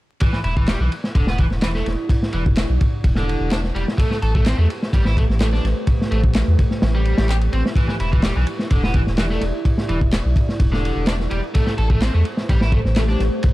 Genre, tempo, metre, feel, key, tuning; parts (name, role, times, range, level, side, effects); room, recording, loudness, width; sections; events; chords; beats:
breakbeat, breaks; 127 BPM; 4/4; straight; E minor; A4 = 440 Hz
deep dark ambient pad; sustained chords; 1.4-13.5 s; A3 to D5; -29 LUFS; equal; chorus, built-in reverb, sidechain pumping
biting overdriven guitar; riff; 0.2-13.2 s; D3 to A4; -26 LUFS; equal; vintage 12-bit sampler grit, ping-pong delay
crunchy breakbeat drum kit; drums; 0.2-13.5 s; kick drum, ride cymbal, snare drum; -19 LUFS; equal
saturated sub bass; bass; 0.4-13.3 s; E1 to E2; -20 LUFS; equal; tube saturation
electronic handclaps; drums; 0.7-13.1 s; -33 LUFS; equal
small room ambience; dark, warm production, vinyl crackle; -16 LUFS; side -17 dB against mid
0.2-13.5 A section
0.2 Em7; 4.0 Am9; 7.8 Em7; 11.5 Am9
| 0.21 0.68 1.15 1.62 | 2.10 2.57 3.04 3.52 | 3.99 4.46 4.93 5.40 | 5.88 6.35 6.82 7.29 | 7.77 8.24 8.71 9.18 | 9.66 10.13 10.60 11.07 | 11.55 12.02 12.49 12.96 | 13.44